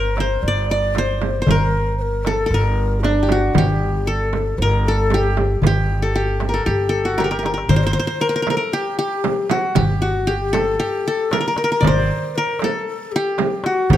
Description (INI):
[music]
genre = Arabic maqam ensemble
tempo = 116 BPM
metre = 4/4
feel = straight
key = G maqam nahawand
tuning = A4 = 444 Hz
[part]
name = qanun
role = melody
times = 0.0-14.0 s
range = D4 to D5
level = -20 LUFS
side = left 1 dB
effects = none
[part]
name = breathy mellow ney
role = second line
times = 0.0-14.0 s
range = D4 to Eb5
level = -27 LUFS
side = left 4 dB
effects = none
[part]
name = upright bass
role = bass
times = 0.0-14.0 s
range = G1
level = -21 LUFS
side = equal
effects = none
[part]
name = darbuka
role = percussion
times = 0.2-14.0 s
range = none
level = -22 LUFS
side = left 1 dB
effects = none
[part]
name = frame drum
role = percussion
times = 0.2-14.0 s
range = none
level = -25 LUFS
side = right 9 dB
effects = none
[sound]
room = light reverb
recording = close, detailed microphones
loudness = -16 LUFS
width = side -12 dB against mid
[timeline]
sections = 0.0-7.7 A section; 7.7-14.0 B section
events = drum fill 7.2-7.7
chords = none